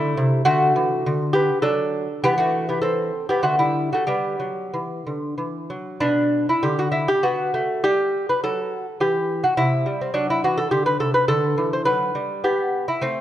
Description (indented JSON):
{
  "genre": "classical, baroque-style dance for lute",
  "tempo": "91-107 BPM",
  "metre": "3/4",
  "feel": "rubato",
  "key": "G major",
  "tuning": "A4 = 441 Hz",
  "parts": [
    { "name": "lute", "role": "solo", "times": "0.0-13.2 s", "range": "B2 to C5", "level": "-19 LUFS", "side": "equal", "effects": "none" }
  ],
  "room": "moderate concert hall reverb, RT60 2.1 s",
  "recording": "none",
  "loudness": "-19 LUFS",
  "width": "side -12 dB against mid",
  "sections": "0.0-6.0 A section; 6.0-13.2 A section",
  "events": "none",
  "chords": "0.5 D; 2.2 E5; 3.4 D5; 4.1 G; 6.0 Bm; 7.8 Em; 9.6 C; 11.3 G/D"
}